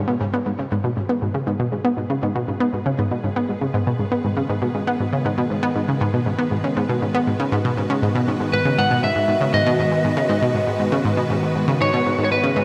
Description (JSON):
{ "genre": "ambient, sequencer-driven space music", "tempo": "119 BPM", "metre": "4/4", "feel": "straight", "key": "G# minor", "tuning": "A4 = 440 Hz", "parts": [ { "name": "evolving wavetable pad", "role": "sustained chords", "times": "0.0-12.6 s", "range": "D#3 to B4", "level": "-28 LUFS", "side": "equal", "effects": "ensemble chorus, built-in reverb, shimmer reverb" }, { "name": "analog pluck", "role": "riff", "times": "0.1-12.6 s", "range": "G#2 to B3", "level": "-23 LUFS", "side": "equal", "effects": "chorus, shimmer reverb, delay" }, { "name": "lightly driven lead guitar", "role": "melody", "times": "8.5-12.6 s", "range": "B4 to F#5", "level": "-23 LUFS", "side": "equal", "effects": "shimmer reverb, delay" } ], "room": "wet plate reverb, RT60 3.0 s", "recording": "none", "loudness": "-21 LUFS", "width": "mono", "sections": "0.0-12.6 A section", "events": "fade-in on ambient pad 0.0-12.6", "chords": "0.0 G#m" }